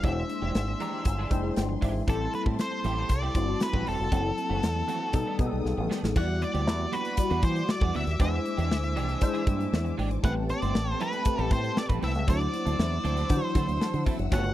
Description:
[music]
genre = polished 1980s jazz-funk pop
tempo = 118 BPM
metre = 4/4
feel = straight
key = E minor from 6.2 s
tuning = A4 = 439 Hz
[part]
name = octave-fuzz lead guitar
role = melody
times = 0.0-14.5 s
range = A4 to F#5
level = -32 LUFS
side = equal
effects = distortion, slapback echo
[part]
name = mellow tine electric piano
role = accompaniment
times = 0.0-14.5 s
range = C#3 to A#5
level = -32 LUFS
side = left 3 dB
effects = medium stereo tremolo, ensemble chorus
[part]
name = warm studio string section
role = sustained chords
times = 0.0-14.5 s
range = G3 to E6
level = -41 LUFS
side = left 2 dB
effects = none
[part]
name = clean electric guitar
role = riff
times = 0.0-14.5 s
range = D#3 to C5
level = -37 LUFS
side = right 5 dB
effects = ensemble chorus
[part]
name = fingered electric bass with an envelope filter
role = bass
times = 0.0-14.5 s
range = E1 to E3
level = -29 LUFS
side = equal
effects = none
[part]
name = modern studio drum kit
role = drums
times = 0.0-14.5 s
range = crash cymbal, hi-hat, kick drum, snare drum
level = -27 LUFS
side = equal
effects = none
[part]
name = congas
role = percussion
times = 0.0-14.4 s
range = none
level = -41 LUFS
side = right 15 dB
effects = none
[sound]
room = little or no reverb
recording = dry, close 1970s-style studio recording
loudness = -25 LUFS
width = side -14 dB against mid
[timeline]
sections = 0.0-6.2 A section; 6.2-14.5 B section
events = tine electric piano fill 0.5-2.1, 13.6-14.3; drum fill 5.6-6.2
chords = 0.0 E7alt; 2.1 Am7; 4.1 F#m7b5; 5.1 B7alt; 6.2 Em9; 8.2 E7alt; 10.2 Am9; 12.3 D9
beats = | 0.04 0.55 1.06 1.57 | 2.08 2.59 3.10 3.61 | 4.12 4.63 5.14 5.65 | 6.16 6.67 7.18 7.69 | 8.20 8.71 9.22 9.73 | 10.24 10.75 11.26 11.77 | 12.28 12.79 13.30 13.81 | 14.32

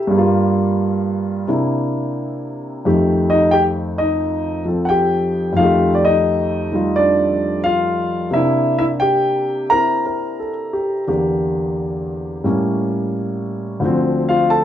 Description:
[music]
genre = solo jazz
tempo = 88 BPM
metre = 4/4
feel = swing 67% on 8ths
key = unclear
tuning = A4 = 441 Hz
[part]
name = warm concert grand piano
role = solo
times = 0.0-14.6 s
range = D2 to Bb5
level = -16 LUFS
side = equal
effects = none
[sound]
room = wet studio reverb, RT60 0.5 s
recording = band playing live in one room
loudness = -16 LUFS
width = side -10 dB against mid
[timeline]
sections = 0.0-14.6 A section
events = none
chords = 0.1 Gm7; 1.5 C9; 2.8 F9; 8.3 C9; 11.1 Em7b5; 12.4 A7b9; 13.8 Dm7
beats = | 0.12 0.80 1.48 2.17 | 2.85 3.53 4.22 4.90 | 5.58 6.27 6.95 7.64 | 8.32 9.01 9.70 10.38 | 11.07 11.76 12.44 13.13 | 13.82 14.50

